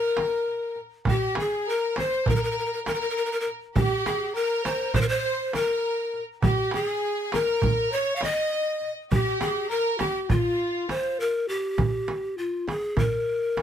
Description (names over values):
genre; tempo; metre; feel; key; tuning
Turkish makam ensemble; 202 BPM (eighths); 9/8; straight; unclear; A4 = 439 Hz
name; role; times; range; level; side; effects
breathy mellow large pan pipes; melody; 0.0-13.6 s; F4 to F5; -26 LUFS; left 1 dB; none
warm studio violin section; second line; 0.0-11.2 s; F4 to Eb5; -30 LUFS; equal; none
darbuka; percussion; 0.2-13.6 s; none; -27 LUFS; right 4 dB; none
frame drum; percussion; 0.2-13.6 s; none; -29 LUFS; left 1 dB; none
room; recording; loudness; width
light reverb; close, detailed microphones; -23 LUFS; side -9 dB against mid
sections
0.0-11.8 A section; 11.8-13.6 B section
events
none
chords
none